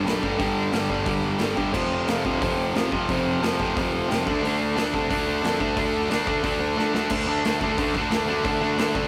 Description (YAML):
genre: punk rock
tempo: 179 BPM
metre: 4/4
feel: straight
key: unclear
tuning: A4 = 440 Hz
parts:
  - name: distorted electric guitar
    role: riff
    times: 0.0-9.1 s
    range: F2 to D4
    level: -29 LUFS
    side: equal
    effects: overdrive
  - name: distorted electric guitar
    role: riff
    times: 0.0-9.1 s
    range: F2 to D4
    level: -27 LUFS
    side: equal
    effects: distortion
  - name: fuzz picked electric bass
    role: bass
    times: 0.0-9.1 s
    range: F1 to C3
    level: -33 LUFS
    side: equal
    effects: overdrive
  - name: big rock drum kit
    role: drums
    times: 0.1-9.0 s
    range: crash cymbal, hi-hat, kick drum, snare drum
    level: -32 LUFS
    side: equal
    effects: none
room: light reverb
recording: rough rehearsal-room recording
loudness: -24 LUFS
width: mono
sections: 0.0-7.1 A section; 7.1-9.1 B section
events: drum fill 6.8-7.1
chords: 0.0 G5; 1.7 F5; 4.3 D5